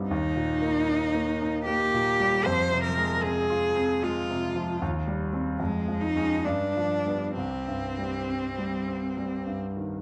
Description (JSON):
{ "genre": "classical, romantic duo for cello and grand piano", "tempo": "64-78 BPM", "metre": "3/4", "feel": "rubato", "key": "C minor", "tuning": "A4 = 440 Hz", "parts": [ { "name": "clear concert grand piano", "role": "accompaniment", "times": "0.0-10.0 s", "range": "C2 to F4", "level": "-31 LUFS", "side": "equal", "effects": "none" }, { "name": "clear cello", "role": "melody", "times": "0.1-9.6 s", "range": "Ab3 to C5", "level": "-29 LUFS", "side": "equal", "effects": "none" } ], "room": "wet recital hall reverb, RT60 1.5 s", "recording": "dark, warm production", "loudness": "-27 LUFS", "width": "mono", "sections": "0.0-10.0 A section", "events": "none", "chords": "0.1 Eb; 2.4 Fm; 4.8 Cm/Eb; 5.6 Db/F; 6.5 G7; 7.4 C5" }